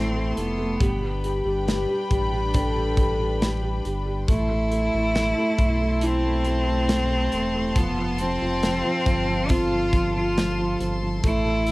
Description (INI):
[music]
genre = pop ballad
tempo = 69 BPM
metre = 4/4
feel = straight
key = unclear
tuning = A4 = 440 Hz
[part]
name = bright cello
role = melody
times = 0.0-11.7 s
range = B3 to F4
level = -26 LUFS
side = equal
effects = cassette tape
[part]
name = felt-muted upright piano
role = accompaniment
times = 0.0-11.7 s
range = F3 to E4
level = -28 LUFS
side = right 2 dB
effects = none
[part]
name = rich studio string section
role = sustained chords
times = 0.0-11.7 s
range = D4 to C6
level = -31 LUFS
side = left 1 dB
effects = none
[part]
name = sub bass with octave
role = bass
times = 0.0-11.7 s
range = E1 to B1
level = -27 LUFS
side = equal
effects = none
[part]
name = modern studio drum kit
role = drums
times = 0.4-11.7 s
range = hi-hat, kick drum, snare drum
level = -26 LUFS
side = equal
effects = cassette tape
[part]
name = mellow French horn section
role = second line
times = 1.2-4.0 s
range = G4 to A4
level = -29 LUFS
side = left 3 dB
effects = none
[sound]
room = little or no reverb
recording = home recording on cassette, faint mains hum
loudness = -21 LUFS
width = side -20 dB against mid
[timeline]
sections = 0.0-11.7 A section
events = none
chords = 0.0 Am; 0.8 G; 4.3 Am; 7.8 F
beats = | 0.81 1.67 2.54 3.41 | 4.28 5.15 6.02 6.89 | 7.76 8.63 9.50 10.37 | 11.24